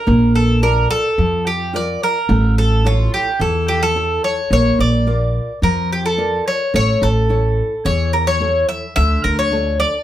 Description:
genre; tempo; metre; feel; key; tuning
greek folk, Greek bouzouki band; 108 BPM; 4/4; straight; unclear; A4 = 440 Hz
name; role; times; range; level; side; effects
Greek bouzouki; melody; 0.0-10.0 s; F4 to E5; -18 LUFS; equal; none
nylon-string guitar; accompaniment; 0.1-10.0 s; D3 to D5; -21 LUFS; left 1 dB; none
upright bass; bass; 0.1-9.8 s; A1 to F2; -18 LUFS; equal; none
room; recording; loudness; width
moderate small room reverb, RT60 0.5 s; heard from further back in the room; -14 LUFS; side -12 dB against mid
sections
0.0-4.5 A section; 4.5-10.0 B section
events
none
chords
0.1 Bb; 2.3 A; 4.5 Bb; 6.7 A; 9.0 Dm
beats
| 0.06 0.62 1.17 1.73 | 2.29 2.84 3.40 3.95 | 4.51 5.06 5.62 6.17 | 6.73 7.29 7.84 8.40 | 8.96 9.51

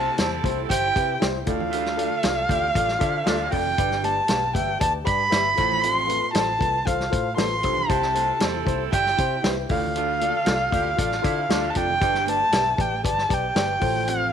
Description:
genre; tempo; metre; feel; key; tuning
uptempo 1960s-style soul; 117 BPM; 4/4; straight; C major; A4 = 442 Hz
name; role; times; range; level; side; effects
dark erhu; melody; 0.0-14.3 s; F5 to C6; -23 LUFS; right 1 dB; none
clear saxophone section; second line; 0.0-3.6, 7.9-11.9 s; F3 to A4; -32 LUFS; right 11 dB; none
mellow reed electric piano; accompaniment; 0.0-14.3 s; G2 to F5; -29 LUFS; left 12 dB; spring reverb
warm baritone saxophone; riff; 0.0-14.3 s; D2 to C3; -33 LUFS; right 12 dB; none
vintage muted picked electric bass; bass; 0.0-14.3 s; F1 to D3; -32 LUFS; equal; none
congas; percussion; 0.1-14.2 s; none; -38 LUFS; right 11 dB; none
mellow electric guitar; stabs; 0.2-13.7 s; E4 to D5; -37 LUFS; right 11 dB; none
warm soul drum kit; drums; 0.2-14.2 s; hi-hat, kick drum, snare drum; -26 LUFS; equal; none
room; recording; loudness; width
moderate echo chamber reverb, RT60 2.3 s; 1960s-style stereo with parts hard left and right; -20 LUFS; side -8 dB against mid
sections
0.0-14.3 A section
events
none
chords
0.0 C; 1.5 Dm; 3.8 G; 5.6 F/A; 7.9 C; 9.7 Dm; 12.0 G; 13.8 F/A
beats
0.18 0.70 1.21 | 1.73 2.24 2.76 3.27 | 3.79 4.30 4.82 5.33 | 5.85 6.36 6.88 7.39 | 7.90 8.42 8.93 9.45 | 9.96 10.47 10.99 11.50 | 12.02 12.53 13.05 13.56 | 14.07

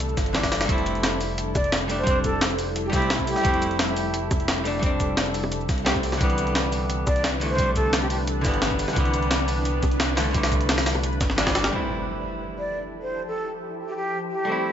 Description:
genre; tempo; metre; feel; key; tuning
liquid drum and bass; 174 BPM; 4/4; straight; F lydian; A4 = 438 Hz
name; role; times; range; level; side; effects
archtop guitar, miked and amplified; accompaniment; 0.0-14.7 s; D3 to G4; -28 LUFS; equal; digital delay
shimmering ambient pad; sustained chords; 0.0-14.7 s; E3 to B4; -32 LUFS; equal; chorus, built-in reverb
smooth gliding synth bass; bass; 0.0-11.7 s; F1 to C2; -29 LUFS; equal; tube saturation
breakbeat sampler-style drum kit; drums; 0.0-11.7 s; hi-hat, shaker, snare drum; -28 LUFS; left 1 dB; small room ambience
jungle sampler-style drum kit; drums; 0.0-11.7 s; hi-hat, snare drum; -29 LUFS; equal; high-pass filter on hats, small room ambience, high-pass filter on snare, high-pass filter on room
electronic kick drum; drums; 0.2-11.5 s; none; -26 LUFS; equal; small room ambience
breathy concert flute; melody; 1.6-3.8, 7.1-8.2, 12.6-14.7 s; G4 to D5; -28 LUFS; equal; digital delay
bongos; percussion; 1.6-11.7 s; none; -33 LUFS; right 1 dB; none
impact; sound effects; 11.7-13.1 s; none; -35 LUFS; equal; none
room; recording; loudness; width
light reverb, digital ambience; nothing above 7.7 kHz; -21 LUFS; side -9 dB against mid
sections
0.0-11.7 A section; 11.7-14.7 B section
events
drop 0.0-11.7; drum fill 11.2-11.7; impact 11.7-13.1; filter sweep on ambient pad 11.7-14.7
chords
0.0 Cadd9; 0.7 Fmaj9; 6.2 Cmaj9; 11.7 Fmaj9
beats
0.00 0.34 | 0.69 1.03 1.38 1.72 | 2.07 2.41 2.76 3.10 | 3.45 3.79 4.14 4.48 | 4.83 5.17 5.52 5.86 | 6.21 6.55 6.90 7.24 | 7.59 7.93 8.28 8.62 | 8.96 9.31 9.65 10.00 | 10.35 10.69 11.03 11.38 | 11.72 12.07 12.41 12.76 | 13.10 13.45 13.79 14.14 | 14.48

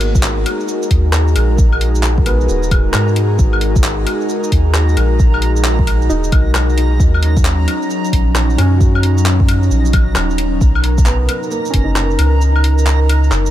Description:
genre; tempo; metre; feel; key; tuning
future garage; 133 BPM; 4/4; swing 64% on 16ths; G# minor; A4 = 439 Hz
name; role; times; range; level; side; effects
felt-muted upright piano; accompaniment; 0.0-13.5 s; A#3 to F#4; -25 LUFS; right 1 dB; sidechain pumping, digital delay
airy breathy pad; sustained chords; 0.0-13.5 s; F#3 to A#4; -20 LUFS; equal; chorus, sidechain pumping
soft dub sub bass; bass; 0.0-13.5 s; D#1 to G#2; -14 LUFS; equal; sidechain pumping
deep house drum kit; drums; 0.0-13.5 s; claves, handclaps, hi-hat, shaker; -21 LUFS; left 1 dB; none
backwards swelling texture; texture; 1.3-13.5 s; A#5; -29 LUFS; right 4 dB; built-in reverb
electronic kick drum; drums; 0.1-11.9 s; none; -14 LUFS; equal; none
room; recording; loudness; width
little or no reverb; none; -11 LUFS; side -12 dB against mid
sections
0.0-13.5 A section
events
kick drops out 12.4-13.5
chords
0.0 G#m7; 7.0 D#m7; 10.6 Bmaj7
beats
0.23 0.69 1.14 | 1.59 2.04 2.49 2.94 | 3.39 3.84 4.29 4.75 | 5.20 5.65 6.10 6.55 | 7.00 7.45 7.90 8.35 | 8.80 9.26 9.71 10.16 | 10.61 11.06 11.51 11.96 | 12.41 12.87 13.32

